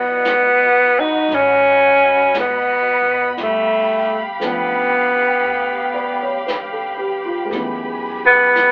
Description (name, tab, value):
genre	jazz ballad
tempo	58 BPM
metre	4/4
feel	swing 66% on 8ths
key	unclear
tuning	A4 = 440 Hz
part	breathy tenor saxophone	melody	0.0-8.7 s	A3 to D#4	-16 LUFS	equal	none
part	dark baby grand piano	accompaniment	0.0-8.7 s	E3 to D5	-29 LUFS	equal	none
part	rich studio string section	sustained chords	0.0-8.7 s	F#4 to B5	-26 LUFS	equal	none
part	upright bass	bass	0.0-8.7 s	G1 to F#2	-43 LUFS	equal	none
part	jazz brush drum kit	drums	0.2-8.7 s	brushed snare drum, hi-hat, snare drum	-34 LUFS	equal	none
room	moderate studio reverb, RT60 0.5 s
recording	band playing live in one room, telephone sound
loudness	-16 LUFS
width	mono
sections	0.0-8.7 A section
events	none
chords	0.0 C#m11; 3.4 G9; 7.5 F#m11